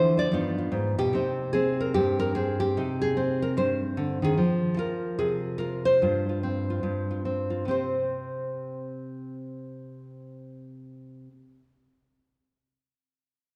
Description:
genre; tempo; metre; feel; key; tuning
solo jazz; 147 BPM; 4/4; swing 64% on 8ths; C minor; A4 = 440 Hz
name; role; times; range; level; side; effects
nylon-string guitar; solo; 0.0-11.3 s; G2 to D5; -28 LUFS; equal; none
room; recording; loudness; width
wet concert hall reverb, RT60 2.0 s; recorded in a church or concert hall; -27 LUFS; mono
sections
0.0-4.4 A section; 4.4-7.6 B section; 7.6-10.9 C section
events
none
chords
0.3 G7b13; 1.1 Cm; 4.4 Fm; 6.0 G7sus4; 7.6 C5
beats
0.32 0.72 | 1.13 1.54 1.95 2.35 | 2.76 3.17 3.57 3.98 | 4.38 4.79 5.20 5.61 | 6.01 6.42 6.83 7.24 | 7.65 8.05 8.46 8.87 | 9.28 9.69 10.10 10.50

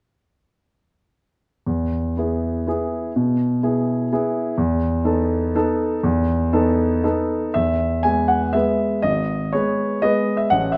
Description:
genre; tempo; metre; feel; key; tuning
classical, piano waltz; 112-133 BPM; 3/4; rubato; E major; A4 = 440 Hz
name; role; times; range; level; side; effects
warm concert grand piano; solo; 1.7-10.8 s; G#1 to G#5; -20 LUFS; equal; none
room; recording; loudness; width
moderate recital hall reverb, RT60 1.4 s; none; -21 LUFS; mono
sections
1.7-7.5 A section; 7.5-10.8 B section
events
none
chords
1.7 E; 4.6 B7/E; 7.5 E; 9.0 G#m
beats
| 1.66 2.15 2.66 | 3.14 3.62 4.11 | 4.58 5.05 5.54 | 6.03 6.51 7.03 | 7.55 8.04 8.54 | 9.03 9.52 10.02 | 10.50

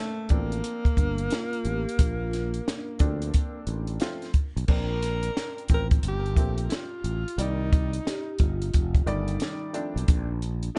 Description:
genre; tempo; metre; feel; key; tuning
hip hop, jazz-hop; 89 BPM; 4/4; swing 65% on 16ths; Bb major; A4 = 440 Hz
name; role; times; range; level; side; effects
breathy alto saxophone; melody; 0.0-8.4 s; A3 to Bb4; -36 LUFS; equal; delay
warm upright piano; accompaniment; 0.3-10.8 s; Eb3 to D5; -38 LUFS; equal; none
sustaining fretless electric bass; bass; 0.3-10.7 s; F1 to D2; -31 LUFS; equal; none
compact cocktail drum kit; drums; 0.3-10.7 s; crash cymbal, hi-hat, kick drum, snare drum; -27 LUFS; equal; none
vibraphone with soft mallets; second line; 1.0-4.0, 8.1-10.8 s; D4 to G4; -39 LUFS; equal; delay
room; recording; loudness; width
little or no reverb; nothing above 10.8 kHz; -27 LUFS; mono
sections
0.0-4.7 A section; 4.7-10.8 B section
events
none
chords
0.0 Bbmaj9; 6.0 Gm11; 7.4 Cm7; 8.7 F13; 10.1 Bbmaj9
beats
0.64 1.31 | 1.99 2.66 3.33 4.01 | 4.68 5.36 6.03 6.71 | 7.38 8.05 8.73 9.40 | 10.08 10.75

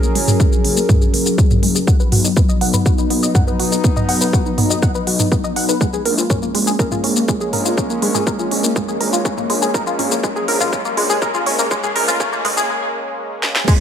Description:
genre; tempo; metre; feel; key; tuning
melodic techno; 122 BPM; 4/4; straight; Bb phrygian; A4 = 440 Hz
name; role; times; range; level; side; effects
sweeping resonant pad; sustained chords; 0.0-13.8 s; Gb3 to Bb4; -21 LUFS; left 1 dB; chorus, sidechain pumping
tight sequenced synth; arpeggios; 0.0-13.7 s; Ab3 to F#5; -21 LUFS; left 1 dB; chorus, sidechain pumping, ping-pong delay
techno drum kit; drums; 0.0-13.8 s; crash cymbal, hi-hat, shaker, snare drum, toms; -20 LUFS; equal; none
swelling detuned saw bass; bass; 0.2-12.6 s; Gb1 to B1; -25 LUFS; equal; sidechain pumping, high-pass filter
electronic kick drum; drums; 0.4-13.8 s; none; -16 LUFS; equal; none
riser and impact; sound effects; 7.7-13.8 s; none; -30 LUFS; equal; none
room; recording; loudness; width
light reverb, digital ambience; high-pass filter; -14 LUFS; side -8 dB against mid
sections
0.0-13.7 A section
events
build-up 0.0-13.7; filter sweep on synth arpeggio sound 0.0-13.7; filter sweep on analog synth pad 0.0-13.7; filter sweep 0.0-13.7; riser 7.7-12.7; break 12.7-13.7; drum fill 13.4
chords
0.0 Gbadd9; 1.9 B; 5.8 Bbm7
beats
0.40 0.89 1.38 | 1.88 2.37 2.86 3.35 | 3.84 4.33 4.83 5.32 | 5.81 6.30 6.79 7.29 | 7.78 8.27 8.76 9.25 | 9.74 10.24 10.73 11.22 | 11.71 12.20 12.70 13.19 | 13.68

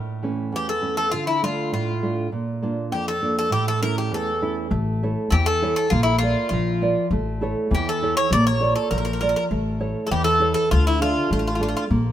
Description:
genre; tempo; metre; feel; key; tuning
greek folk; 100 BPM; 2/4; straight; A phrygian dominant; A4 = 437 Hz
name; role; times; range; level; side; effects
nylon-string guitar; accompaniment; 0.0-12.1 s; E2 to D5; -24 LUFS; right 2 dB; none
Greek bouzouki; melody; 0.6-11.8 s; E4 to D5; -23 LUFS; left 1 dB; none
upright bass; bass; 4.7-12.1 s; A1 to E2; -23 LUFS; left 1 dB; none
room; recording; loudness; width
light reverb; minimal, uncompressed stereo recording; -20 LUFS; side -11 dB against mid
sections
0.0-4.7 A section; 4.7-12.1 A section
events
none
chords
0.0 A; 1.1 Dm; 2.3 Bb; 3.5 A; 5.9 Bb; 7.1 A; 8.3 Bb; 9.5 A; 10.7 Dm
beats
0.52 | 1.12 1.72 | 2.32 2.92 | 3.52 4.12 | 4.72 5.32 | 5.92 6.52 | 7.12 7.71 | 8.31 8.91 | 9.51 10.11 | 10.71 11.31 | 11.91

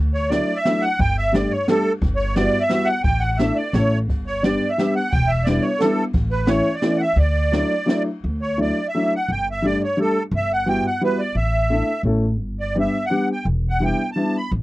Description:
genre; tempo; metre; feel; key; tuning
musette waltz; 174 BPM; 3/4; rubato; D major; A4 = 444 Hz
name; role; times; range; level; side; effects
upright bass; bass; 0.0-14.6 s; E1 to D2; -22 LUFS; equal; none
musette accordion; melody; 0.1-14.5 s; A4 to B5; -22 LUFS; right 1 dB; none
jazz brush drum kit; drums; 0.2-8.0 s; kick drum, ride cymbal, snare drum; -24 LUFS; equal; none
warm upright piano; accompaniment; 0.3-14.3 s; E3 to A4; -22 LUFS; left 1 dB; none
room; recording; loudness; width
little or no reverb; dry, close 1970s-style studio recording; -18 LUFS; side -18 dB against mid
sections
0.0-8.2 A section; 8.2-14.6 A section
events
none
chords
0.0 Dadd9; 1.0 Gsus2; 2.0 Emadd9/G; 3.0 Asus4; 3.7 A; 4.1 G; 5.1 Em7; 6.2 A; 7.2 Dadd9; 9.3 Gsus2; 10.3 Emadd9/G; 11.3 Asus4; 12.0 A; 12.4 G; 13.5 Em7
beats
0.31 0.66 | 1.00 1.34 1.69 | 2.02 2.37 2.71 | 3.05 3.40 3.75 | 4.10 4.45 4.79 | 5.14 5.48 5.82 | 6.16 6.50 6.84 | 7.18 7.53 7.88 | 8.24 8.59 8.94 | 9.28 9.62 9.97 | 10.31 10.66 11.00 | 11.35 11.70 12.05 | 12.40 12.76 13.11 | 13.46 13.81 14.16 | 14.51

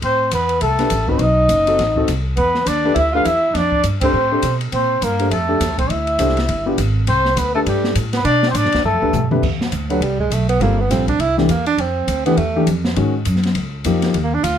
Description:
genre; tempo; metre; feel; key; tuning
jazz, small-group swing and bop; 204 BPM; 4/4; swing 60% on 8ths; A minor; A4 = 440 Hz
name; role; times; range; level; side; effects
dark trumpet; melody; 0.0-9.3 s; G4 to F5; -18 LUFS; left 2 dB; none
breathy tenor saxophone; second line; 0.0-14.6 s; F#3 to F4; -21 LUFS; right 5 dB; none
upright bass; bass; 0.0-14.6 s; F#1 to B2; -20 LUFS; equal; none
open jazz drum kit; drums; 0.0-14.5 s; crash cymbal, hi-hat, kick drum, ride cymbal, snare drum, toms; -25 LUFS; left 1 dB; none
warm grand piano; accompaniment; 0.8-14.2 s; C3 to C5; -20 LUFS; left 2 dB; none
room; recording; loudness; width
moderate studio reverb, RT60 0.5 s; none; -15 LUFS; side -9 dB against mid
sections
0.0-9.4 A section; 9.4-14.6 B section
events
band accent 4.0; drum fill 8.8-9.4; tenor saxophone solo 9.4-14.6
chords
0.0 Amadd9; 1.2 B7b9; 2.4 Em7; 3.6 F69; 4.7 Bbmaj9; 5.9 Dsus2; 6.5 G7b9; 7.1 Csus2; 8.2 Bm7b5; 8.8 G9; 9.4 Cmaj9; 10.6 Gm7; 11.2 C; 11.8 Fmaj7; 13.0 Ab5; 13.6 Dbadd9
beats
| 0.03 0.32 0.61 0.91 | 1.20 1.50 1.79 2.08 | 2.38 2.67 2.96 3.26 | 3.55 3.84 4.14 4.43 | 4.72 5.02 5.31 5.61 | 5.90 6.19 6.49 6.78 | 7.07 7.37 7.66 7.96 | 8.25 8.54 8.84 9.13 | 9.43 9.72 10.02 10.31 | 10.61 10.90 11.20 11.49 | 11.79 12.08 12.38 12.67 | 12.96 13.26 13.55 13.85 | 14.14 14.44

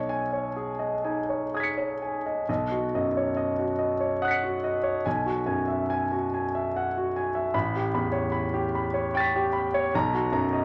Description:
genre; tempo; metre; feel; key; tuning
classical, impressionist solo piano; 61-78 BPM; 3/4; rubato; B major; A4 = 440 Hz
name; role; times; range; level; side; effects
clear concert grand piano; solo; 0.0-10.6 s; A1 to C#7; -27 LUFS; equal; none
room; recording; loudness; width
wet large studio reverb, RT60 1.4 s; none; -27 LUFS; mono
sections
0.0-2.5 A section; 2.5-10.6 A section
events
none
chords
0.0 B69; 2.5 Badd9; 5.1 Eadd9/B; 7.5 A9; 9.9 Bmaj7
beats
0.56 1.53 | 2.48 3.37 4.21 | 5.05 5.89 6.73 | 7.54 8.34 9.15 | 9.94

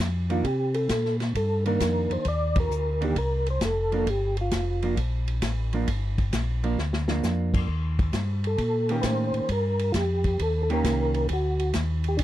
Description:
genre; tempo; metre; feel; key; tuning
soul jazz organ trio; 133 BPM; 4/4; swing 68% on 8ths; G minor; A4 = 444 Hz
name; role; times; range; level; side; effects
mellow tonewheel organ; bass; 0.0-12.2 s; F1 to C3; -26 LUFS; equal; slow rotary speaker
warm soul drum kit; drums; 0.0-12.2 s; crash cymbal, hi-hat, kick drum, ride cymbal, snare drum; -30 LUFS; equal; none
percussive tonewheel organ; melody; 0.3-5.0, 8.5-12.2 s; D4 to D5; -27 LUFS; equal; slow rotary speaker, chorus vibrato
vintage hollow-body jazz guitar; accompaniment; 0.3-11.3 s; Eb3 to G4; -28 LUFS; right 5 dB; none
room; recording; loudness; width
little or no reverb; none; -23 LUFS; side -13 dB against mid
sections
0.0-12.2 A section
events
band accent 2.5; drum fill 6.8-7.2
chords
0.4 Cm9; 4.1 Gm7; 7.7 Eb7; 11.3 D(b9)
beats
| 0.45 0.90 1.35 1.80 | 2.26 2.71 3.16 3.61 | 4.07 4.52 4.97 5.42 | 5.88 6.33 6.78 7.23 | 7.68 8.13 8.59 9.04 | 9.49 9.94 10.39 10.84 | 11.29 11.75 12.20

